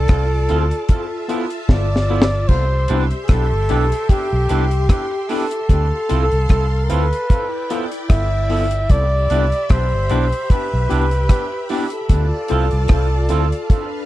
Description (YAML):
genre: lovers rock reggae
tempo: 75 BPM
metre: 4/4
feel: swing 55% on 16ths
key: C major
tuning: A4 = 439 Hz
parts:
  - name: breathy flugelhorn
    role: melody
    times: 0.0-14.1 s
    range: G4 to E5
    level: -23 LUFS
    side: equal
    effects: tape echo
  - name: string machine, violins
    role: second line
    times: 0.0-14.1 s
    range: D4 to C6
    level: -28 LUFS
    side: left 1 dB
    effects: ensemble chorus
  - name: vintage muted fingered electric bass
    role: bass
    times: 0.0-13.5 s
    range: G1 to D2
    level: -18 LUFS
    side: equal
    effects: none
  - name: deep reggae drum kit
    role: drums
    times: 0.1-13.9 s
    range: hi-hat, kick drum, rim click, snare drum, splash cymbal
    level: -15 LUFS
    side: equal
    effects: none
  - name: tine electric piano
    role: accompaniment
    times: 0.5-13.4 s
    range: B3 to A4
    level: -25 LUFS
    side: left 2 dB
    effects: overdrive, fast stereo tremolo, dub echo
  - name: electric guitar through a small old amp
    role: stabs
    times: 0.5-13.5 s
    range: F3 to B4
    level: -27 LUFS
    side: right 7 dB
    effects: dub echo
room: light reverb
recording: dark, warm production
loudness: -15 LUFS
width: side -15 dB against mid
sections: 0.0-14.1 A section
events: drum fill 1.7-2.5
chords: 0.0 Dm7; 0.9 G13; 2.5 Cmaj9; 5.7 Dm7; 7.3 G13; 8.9 Cmaj9; 12.1 Dm7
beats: 0.09 0.89 1.69 | 2.49 3.29 4.09 4.90 | 5.70 6.50 7.30 8.10 | 8.90 9.70 10.50 11.30 | 12.10 12.90 13.70